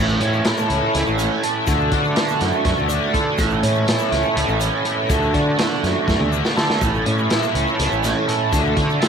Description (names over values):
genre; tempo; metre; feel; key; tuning
psychedelic rock; 245 BPM (eighths); 7/8; straight; A major; A4 = 439 Hz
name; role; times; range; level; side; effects
hand-pumped harmonium; sustained chords; 0.0-9.1 s; A3 to F#4; -25 LUFS; right 13 dB; none
biting overdriven guitar; riff; 0.0-9.1 s; A2 to A4; -20 LUFS; left 1 dB; rotary speaker
fuzz fingered electric bass; bass; 0.0-9.0 s; A1 to D3; -23 LUFS; left 1 dB; overdrive, transformer saturation
tanpura; drone; 0.0-9.1 s; A2 to A3; -31 LUFS; right 2 dB; none
egg shaker; percussion; 0.1-9.1 s; none; -39 LUFS; left 18 dB; none
crunchy breakbeat drum kit; drums; 0.2-9.1 s; hi-hat, kick drum, snare drum, toms; -23 LUFS; left 1 dB; none
room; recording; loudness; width
light reverb, studio ambience; 1960s-style stereo with parts hard left and right; -16 LUFS; side -7 dB against mid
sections
0.0-9.1 A section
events
drum fill 6.1-6.8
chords
0.0 A; 1.7 D; 3.4 A; 5.1 D; 6.8 A; 8.5 D